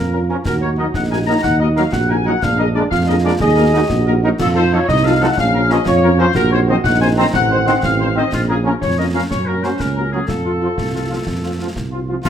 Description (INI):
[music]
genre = military-style march for wind band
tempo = 122 BPM (dotted quarters)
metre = 6/8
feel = straight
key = Bb minor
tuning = A4 = 441 Hz
[part]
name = warm euphonium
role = second line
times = 0.0-12.0 s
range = C4 to Ab4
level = -22 LUFS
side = right 5 dB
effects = none
[part]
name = warm woodwind section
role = second line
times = 0.0-12.3 s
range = Db4 to Bb5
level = -20 LUFS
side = left 3 dB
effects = none
[part]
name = dark tuba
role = bass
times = 0.0-12.3 s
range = A1 to Gb2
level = -18 LUFS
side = right 2 dB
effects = none
[part]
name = warm trumpet section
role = melody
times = 0.1-12.3 s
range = F4 to C5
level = -27 LUFS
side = equal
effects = none
[part]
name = mellow French horn section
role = accompaniment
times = 0.1-12.1 s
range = Eb3 to Ab4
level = -24 LUFS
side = left 4 dB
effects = none
[part]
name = bright trombone section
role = sustained chords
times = 0.3-12.2 s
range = Eb3 to F4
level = -24 LUFS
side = right 2 dB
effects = none
[part]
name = concert snare drum, clash cymbals and concert bass drum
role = drums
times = 0.5-12.3 s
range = none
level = -25 LUFS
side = left 1 dB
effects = none
[sound]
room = moderate large studio reverb, RT60 0.9 s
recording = none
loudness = -14 LUFS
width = side -9 dB against mid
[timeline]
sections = 0.0-12.3 A section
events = none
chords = 0.5 Ebm; 2.4 Bb7; 3.4 Ebm; 4.4 F7; 5.4 Bbm; 6.4 Cm7b5/Bb; 7.3 Adim7; 8.3 Bbm; 9.3 Gb; 10.3 F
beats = | 0.46 0.95 | 1.44 1.94 | 2.43 2.92 | 3.41 3.90 | 4.39 4.88 | 5.38 5.87 | 6.36 6.85 | 7.34 7.83 | 8.32 8.82 | 9.31 9.80 | 10.29 10.78 | 11.27 11.76 | 12.25